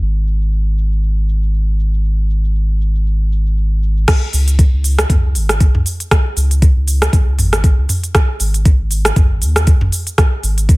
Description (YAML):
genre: afro house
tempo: 118 BPM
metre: 4/4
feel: swing 56% on 16ths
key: unclear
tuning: A4 = 440 Hz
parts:
  - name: round analog bass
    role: bass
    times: 0.0-10.8 s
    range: G#1 to D#2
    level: -15 LUFS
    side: equal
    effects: sidechain pumping
  - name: afro-pop drum kit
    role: drums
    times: 0.0-10.8 s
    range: cabasa, crash cymbal, hi-hat, rim click, toms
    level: -17 LUFS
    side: equal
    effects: low-pass filter on perc, studio reverb, low-pass filter on snare, low-pass filter on hats, low-pass filter on cymbals, low-pass filter on toms
  - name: electronic kick drum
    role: drums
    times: 4.1-10.8 s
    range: none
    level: -11 LUFS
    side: equal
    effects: studio reverb
room: digital ambience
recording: none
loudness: -12 LUFS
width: side -22 dB against mid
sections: 0.0-4.1 A section; 4.1-10.8 B section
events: drop 4.1-10.8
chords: none